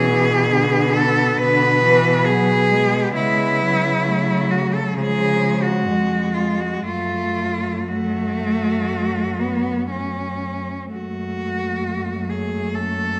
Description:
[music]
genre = classical, lyrical piece for cello ensemble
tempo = 58-69 BPM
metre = 4/4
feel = rubato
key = F# minor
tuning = A4 = 440 Hz
[part]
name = rich cello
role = melody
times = 0.0-13.2 s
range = E4 to B4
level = -22 LUFS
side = equal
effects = none
[part]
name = rich cello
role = second line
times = 0.0-13.2 s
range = G#3 to C#4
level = -28 LUFS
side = equal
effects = none
[part]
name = rich cello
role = accompaniment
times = 0.0-13.2 s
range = D3 to C#4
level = -26 LUFS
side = equal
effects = none
[part]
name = dark cello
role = bass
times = 0.0-13.2 s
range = E#2 to C#3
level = -27 LUFS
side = equal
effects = none
[sound]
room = moderate recital hall reverb, RT60 1.9 s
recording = none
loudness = -20 LUFS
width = mono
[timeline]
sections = 0.0-10.9 A section; 10.9-13.2 B section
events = none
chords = 0.0 Bm; 1.4 G#dim/B; 3.1 F#m/C#; 4.9 C#; 6.9 F#m

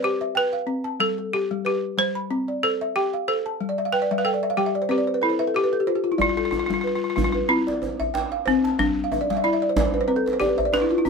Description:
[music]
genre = west african traditional, West African string and xylophone music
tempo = 92 BPM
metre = 4/4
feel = swing 55% on 16ths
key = G mixolydian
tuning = A4 = 440 Hz
[part]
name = balafon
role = melody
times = 0.0-11.1 s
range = C4 to C5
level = -23 LUFS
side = left 2 dB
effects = none
[part]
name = balafon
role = arpeggios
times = 0.0-11.1 s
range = G3 to B5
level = -24 LUFS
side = equal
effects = none
[part]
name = djembe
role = percussion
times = 6.2-11.1 s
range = none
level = -28 LUFS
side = right 3 dB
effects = none
[sound]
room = light reverb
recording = none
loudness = -20 LUFS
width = side -5 dB against mid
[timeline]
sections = 0.0-6.2 A section; 6.2-11.1 A section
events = balafon fill 3.7-6.2, 9.0-11.1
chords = 0.0 C; 1.0 G; 2.3 C; 3.6 G13; 4.9 C; 6.2 G; 7.5 C; 8.8 G5; 10.1 C

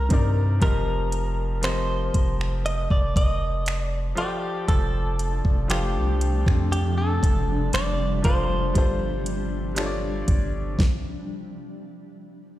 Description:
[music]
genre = contemporary R&B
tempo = 59 BPM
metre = 4/4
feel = straight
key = unclear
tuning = A4 = 439 Hz
[part]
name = direct-recorded clean electric guitar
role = melody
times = 0.0-11.8 s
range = G4 to Eb5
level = -29 LUFS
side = equal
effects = spring reverb, digital delay
[part]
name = clear baby grand piano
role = accompaniment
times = 0.0-10.8 s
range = C3 to F5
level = -31 LUFS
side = left 2 dB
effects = none
[part]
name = long sustained 808-style bass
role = bass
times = 0.0-10.8 s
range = F1 to G2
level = -25 LUFS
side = equal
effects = none
[part]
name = smooth R&B drum kit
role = drums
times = 0.1-11.0 s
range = finger snaps, hi-hat, kick drum, snare drum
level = -22 LUFS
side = equal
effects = none
[part]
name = granular cloud pad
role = sustained chords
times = 5.3-10.7 s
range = C3 to D4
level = -31 LUFS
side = left 1 dB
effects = built-in reverb
[sound]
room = digital ambience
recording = played on a big sound system in a bare room, stone room reverb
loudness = -21 LUFS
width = side -14 dB against mid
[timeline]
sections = 0.0-12.6 A section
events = stop 10.8-12.6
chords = 0.0 Cm7; 0.6 F7sus4; 4.2 Dm7/F; 8.8 G7sus4

